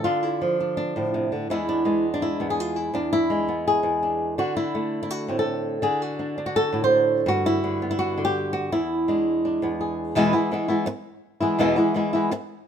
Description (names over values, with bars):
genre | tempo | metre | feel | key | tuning
flamenco | 166 BPM | 4/4 | straight | unclear | A4 = 440 Hz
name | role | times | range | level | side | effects
flamenco guitar | solo | 0.0-12.4 s | E2 to C5 | -21 LUFS | equal | none
room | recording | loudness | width
light reverb | minimal, uncompressed stereo recording | -21 LUFS | side -8 dB against mid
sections
0.0-10.2 A section; 10.2-12.7 B section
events
none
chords
0.0 Dmadd9; 1.5 E7; 4.4 D7; 7.3 Gmaj7; 8.7 E7; 10.2 E